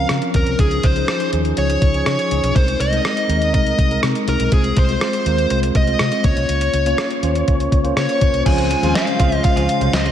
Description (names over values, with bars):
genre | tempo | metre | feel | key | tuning
1980s-style pop | 122 BPM | 4/4 | straight | Db major | A4 = 441 Hz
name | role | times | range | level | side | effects
dark smooth lead guitar | melody | 0.0-10.1 s | Ab4 to Ab5 | -21 LUFS | equal | overdrive, slapback echo
mellow tine electric piano | accompaniment | 0.0-10.1 s | F3 to Db5 | -21 LUFS | left 1 dB | medium stereo tremolo, slapback echo
vintage muted fingered electric bass | bass | 0.0-10.1 s | Cb2 to Db3 | -21 LUFS | equal | none
clean 12-bit digital drum machine | drums | 0.1-10.1 s | crash cymbal, hi-hat, kick drum, rim click, snare drum, tambourine | -19 LUFS | equal | none
brassy analog pad | sustained chords | 8.5-10.1 s | Db3 to C5 | -25 LUFS | left 1 dB | chorus
twelve-string electric guitar | riff | 8.5-10.1 s | F3 to Ab4 | -26 LUFS | right 4 dB | lush chorus, slapback echo
room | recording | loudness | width
moderate lush hall reverb, RT60 1.9 s, digital ambience | big arena sound | -15 LUFS | side -10 dB against mid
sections
0.0-8.5 A section; 8.5-10.1 B section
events
none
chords
0.0 Bbmadd9; 0.6 Dbadd9; 2.6 Abadd9/C; 4.5 Fm/C; 6.2 Bbmadd9; 8.5 Dbmaj7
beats
0.10 | 0.59 1.08 1.57 2.06 | 2.56 3.05 3.54 4.03 | 4.52 5.01 5.51 6.00 | 6.49 6.98 7.47 7.97 | 8.46 8.95 9.44 9.93